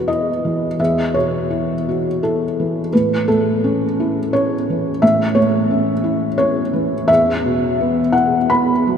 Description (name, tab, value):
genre	neoclassical minimalist piano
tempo	85 BPM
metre	3/4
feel	rubato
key	unclear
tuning	A4 = 440 Hz
part	felt-muted upright piano	solo	0.0-9.0 s	E2 to B5	-15 LUFS	equal	none
room	wet cathedral reverb, RT60 5.7 s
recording	in a vast, echoing space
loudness	-15 LUFS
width	side -7 dB against mid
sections	0.0-9.0 A section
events	none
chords	0.0 Esus2; 2.9 A; 7.1 Esus2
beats	0.07 | 0.79 1.50 2.21 | 2.92 3.62 4.32 | 5.02 5.71 6.39 | 7.09 7.79 8.51